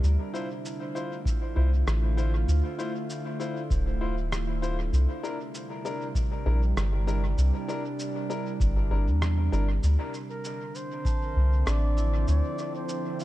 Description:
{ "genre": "ambient dub", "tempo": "98 BPM", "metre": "4/4", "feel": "straight", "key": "D minor", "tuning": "A4 = 439 Hz", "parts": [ { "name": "warbly tape-like pad", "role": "sustained chords", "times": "0.0-13.2 s", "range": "C3 to E5", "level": "-34 LUFS", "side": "right 2 dB", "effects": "chorus, built-in reverb" }, { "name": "soft dub sub bass", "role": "bass", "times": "0.0-12.4 s", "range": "D1 to E2", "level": "-24 LUFS", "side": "equal", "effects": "none" }, { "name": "electronic cabasa and rim click", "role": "drums", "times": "0.0-13.2 s", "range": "none", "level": "-38 LUFS", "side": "equal", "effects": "dub echo" }, { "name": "warm upright piano", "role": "stabs", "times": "0.3-9.7 s", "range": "D4 to C5", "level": "-36 LUFS", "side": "left 4 dB", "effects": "dub echo" }, { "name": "electronic kick drum", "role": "drums", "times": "1.3-11.2 s", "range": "none", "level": "-28 LUFS", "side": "equal", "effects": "none" }, { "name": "trumpet with bucket mute", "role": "melody", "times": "10.3-13.2 s", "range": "F4 to D5", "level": "-36 LUFS", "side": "equal", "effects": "dub echo" }, { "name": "vibraphone with medium hard mallets", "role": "arpeggios", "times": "11.0-13.2 s", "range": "D4 to A5", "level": "-38 LUFS", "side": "right 2 dB", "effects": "dub echo" } ], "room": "little or no reverb", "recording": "dark, warm production", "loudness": "-25 LUFS", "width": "side -15 dB against mid", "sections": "0.0-13.2 A section", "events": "none", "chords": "0.0 Dm9; 4.9 C9; 9.8 Dm9" }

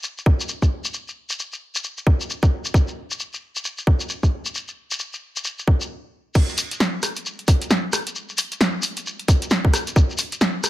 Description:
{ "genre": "UK garage", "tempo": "133 BPM", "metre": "4/4", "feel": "swing 60% on 16ths", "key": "none", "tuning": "none", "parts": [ { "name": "shekere", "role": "percussion", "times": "0.0-10.7 s", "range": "none", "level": "-26 LUFS", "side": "left 2 dB", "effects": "none" }, { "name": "electronic kick drum", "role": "drums", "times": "0.3-10.1 s", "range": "none", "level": "-17 LUFS", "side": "equal", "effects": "none" }, { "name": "punchy analog drum machine", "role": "drums", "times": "6.4-10.7 s", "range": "crash cymbal, hi-hat, rim click, snare drum", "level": "-21 LUFS", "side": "equal", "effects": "none" } ], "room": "little or no reverb", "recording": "none", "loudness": "-20 LUFS", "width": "side -15 dB against mid", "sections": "0.0-6.4 A section; 6.4-10.7 B section", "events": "stop 5.9-6.4; drop 6.4-10.7", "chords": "none" }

